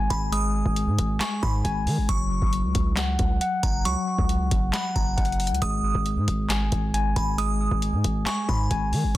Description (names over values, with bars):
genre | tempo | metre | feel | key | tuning
hip hop, trap | 136 BPM | 4/4 | half-time | G# minor | A4 = 440 Hz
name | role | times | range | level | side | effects
mellow tine electric piano | arpeggios | 0.0-9.2 s | F#3 to G#5 | -28 LUFS | left 3 dB | medium stereo tremolo, tape echo
hard-hitting 808-style bass | bass | 0.0-9.2 s | F#1 to D#3 | -26 LUFS | equal | none
delicate synth tine bell | second line | 0.1-9.2 s | A#5 to D#6 | -31 LUFS | right 2 dB | chorus, phaser, tremolo, tape echo
booming analog drum machine | drums | 0.1-9.2 s | handclaps, hi-hat, kick drum, snare drum | -26 LUFS | equal | none
room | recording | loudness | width
digital ambience | dense, heavily limited modern master | -22 LUFS | side -15 dB against mid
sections
0.0-9.2 A section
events
none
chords
0.0 G#5; 2.1 F#5; 5.6 G#5